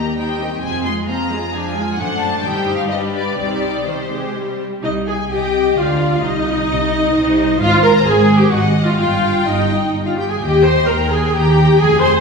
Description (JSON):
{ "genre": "quick classical-period movement for string orchestra", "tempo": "130 BPM", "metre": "3/4", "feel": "rubato", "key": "C minor", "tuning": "A4 = 440 Hz", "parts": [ { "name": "clear symphonic violin section", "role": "melody", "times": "0.0-12.1 s", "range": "C5 to C6", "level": "-22 LUFS", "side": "left 5 dB", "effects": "none" }, { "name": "clear symphonic violin section", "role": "second line", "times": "0.0-12.2 s", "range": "D4 to Bb5", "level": "-26 LUFS", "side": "left 3 dB", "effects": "none" }, { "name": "rich studio viola section", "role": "accompaniment", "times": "0.0-12.2 s", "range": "Eb3 to C5", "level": "-17 LUFS", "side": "equal", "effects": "none" }, { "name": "rich symphonic cello section", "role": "bass", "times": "0.0-12.2 s", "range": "Eb2 to D3", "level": "-22 LUFS", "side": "right 1 dB", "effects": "none" }, { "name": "rich symphonic double bass section", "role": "bass", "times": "0.6-12.2 s", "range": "F1 to Eb2", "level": "-20 LUFS", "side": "right 1 dB", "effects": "none" } ], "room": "wet scoring stage reverb, RT60 1.5 s", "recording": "heard from further back in the room, studio ambience", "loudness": "-14 LUFS", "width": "side -4 dB against mid", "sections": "0.0-4.8 A section; 4.8-12.2 B section", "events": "none", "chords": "0.2 Cm/Eb; 0.6 Fm; 1.5 Ddim/F; 2.0 D7/F#; 2.4 Cm/G; 2.9 G; 3.4 Cm; 5.8 Dm; 6.2 Cm; 7.6 Ab5; 9.0 Ebadd9/G; 10.4 Eb", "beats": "0.17 | 0.63 1.09 1.54 | 1.99 2.44 2.91 | 3.39 3.87 4.36 | 4.84 5.31 5.77 | 6.23 6.69 7.14 | 7.59 8.05 8.51 | 8.99 9.46 9.94 | 10.41 10.88 11.34 | 11.79" }